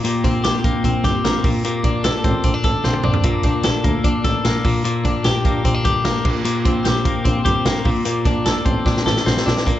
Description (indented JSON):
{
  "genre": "jangly indie pop",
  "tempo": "150 BPM",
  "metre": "4/4",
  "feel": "straight",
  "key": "unclear",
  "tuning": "A4 = 440 Hz",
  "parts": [
    { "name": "twelve-string electric guitar", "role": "arpeggios", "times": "0.0-9.8 s", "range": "Bb2 to A4", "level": "-19 LUFS", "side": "left 2 dB", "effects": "analog delay" },
    { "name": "vintage drum kit", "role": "drums", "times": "0.0-9.8 s", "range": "crash cymbal, hi-hat, kick drum, snare drum, toms", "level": "-20 LUFS", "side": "right 1 dB", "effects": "analog delay" },
    { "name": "muted double bass", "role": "bass", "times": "0.2-9.7 s", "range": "G1 to D2", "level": "-23 LUFS", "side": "right 1 dB", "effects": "none" }
  ],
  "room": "light reverb",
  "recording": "echo-heavy mix, nothing above 7.9 kHz",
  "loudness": "-16 LUFS",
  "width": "side -13 dB against mid",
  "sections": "0.0-9.7 A section",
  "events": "drum fill 2.8-3.2, 8.9-9.7",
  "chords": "0.0 C5/Bb; 1.4 D5; 3.2 Bbmaj7; 4.6 Gm; 6.2 C5/Bb; 7.9 D5"
}